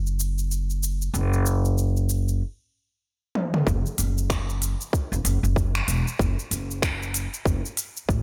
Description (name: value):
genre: organic downtempo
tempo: 95 BPM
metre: 4/4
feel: swing 59% on 16ths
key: F# minor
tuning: A4 = 440 Hz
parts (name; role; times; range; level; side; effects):
- upright bass; bass; 0.0-8.2 s; E1 to A1; -26 LUFS; equal; sidechain pumping
- organic electronic drum kit; drums; 0.1-8.2 s; finger snaps, hi-hat, shaker, toms; -31 LUFS; equal; none
- electronic kick drum; drums; 3.7-8.2 s; none; -28 LUFS; equal; none
room: light reverb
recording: none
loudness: -25 LUFS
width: mono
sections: 0.0-3.7 A section; 3.7-8.2 B section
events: stop 2.4-3.7; drum fill 3.4-3.7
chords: none